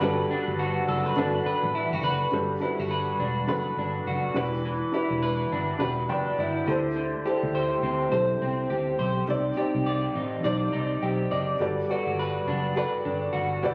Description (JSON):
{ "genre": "indie pop", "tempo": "104 BPM", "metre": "4/4", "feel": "swing 60% on 16ths", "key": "G major", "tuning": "A4 = 438 Hz", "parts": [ { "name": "electric guitar through a small old amp", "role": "accompaniment", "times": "0.0-13.7 s", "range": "C3 to D5", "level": "-30 LUFS", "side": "equal", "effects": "lush chorus, vibrato effect" }, { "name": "warm upright piano", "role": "accompaniment", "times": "0.0-13.7 s", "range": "D4 to G5", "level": "-31 LUFS", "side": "equal", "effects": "cassette tape" }, { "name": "vintage muted fingered electric bass", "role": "bass", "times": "0.0-13.7 s", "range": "E1 to D2", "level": "-34 LUFS", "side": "equal", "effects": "none" } ], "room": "moderate spring reverb, RT60 2.4 s", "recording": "recorded on a phone in the room, studio reverb, compression", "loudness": "-27 LUFS", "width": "mono", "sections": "0.0-2.3 A section; 2.3-13.7 B section", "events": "upright piano fill 5.8-7.0, 10.7-11.6", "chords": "0.0 Gmaj7; 4.4 Em7; 6.7 D7sus4; 9.3 Cmadd9; 11.6 Gmaj7", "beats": "| 0.01 0.59 1.17 1.75 | 2.33 2.91 3.49 4.07 | 4.64 5.22 5.80 6.38 | 6.96 7.54 8.12 8.70 | 9.28 9.86 10.44 11.02 | 11.60 12.18 12.76 13.34" }